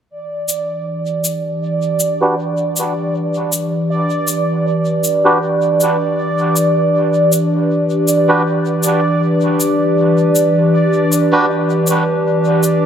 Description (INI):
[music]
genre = ambient dub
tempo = 79 BPM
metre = 4/4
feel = swing 56% on 16ths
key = E minor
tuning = A4 = 439 Hz
[part]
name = warbly tape-like pad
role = sustained chords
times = 0.6-12.9 s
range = E3 to B4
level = -16 LUFS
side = equal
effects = chorus, built-in reverb
[part]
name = bubbling stepped-filter texture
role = texture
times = 0.1-12.9 s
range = D5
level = -18 LUFS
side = right 2 dB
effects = chorus, built-in reverb
[part]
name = cabasa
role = drums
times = 0.5-12.8 s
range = none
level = -20 LUFS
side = left 2 dB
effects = dub echo
[part]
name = melodica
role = stabs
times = 2.2-11.5 s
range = D4 to B4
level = -18 LUFS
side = right 1 dB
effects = low-pass filter, dub echo
[sound]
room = moderate spring reverb, RT60 2.6 s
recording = echo-heavy mix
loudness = -13 LUFS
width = side -8 dB against mid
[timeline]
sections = 0.1-12.9 A section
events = fade-in on ambient pad 0.1-12.9; filter sweep on melodica 0.1-12.9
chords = 0.1 Em7